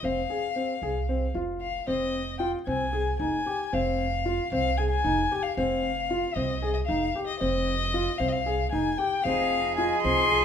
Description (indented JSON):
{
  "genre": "contemporary instrumental, chamber music in an uneven meter",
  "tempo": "228 BPM (eighths)",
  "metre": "7/8",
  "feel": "straight",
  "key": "F minor",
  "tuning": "A4 = 440 Hz",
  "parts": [
    { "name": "dark violin", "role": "melody", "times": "0.0-10.4 s", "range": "Eb5 to C6", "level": "-28 LUFS", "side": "left 5 dB", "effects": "none" },
    { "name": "felt-muted upright piano", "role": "arpeggios", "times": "0.0-10.4 s", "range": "C4 to Ab4", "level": "-29 LUFS", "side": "left 1 dB", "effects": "none" },
    { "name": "upright bass", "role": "bass", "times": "0.0-10.4 s", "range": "F1 to C2", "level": "-32 LUFS", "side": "right 2 dB", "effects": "none" },
    { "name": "rich cello", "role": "second line", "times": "9.3-10.4 s", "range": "Ab4", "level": "-27 LUFS", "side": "right 10 dB", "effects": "none" },
    { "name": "hand-pumped harmonium", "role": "sustained chords", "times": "9.3-10.4 s", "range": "F3 to Ab4", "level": "-32 LUFS", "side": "left 1 dB", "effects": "none" }
  ],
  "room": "moderate recital hall reverb, RT60 1.5 s",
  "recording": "minimal, uncompressed stereo recording",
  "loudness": "-24 LUFS",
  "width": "side -8 dB against mid",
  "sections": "0.0-1.9 A section; 1.9-10.4 B section",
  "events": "none",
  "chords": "0.0 Fm; 1.9 Fm7"
}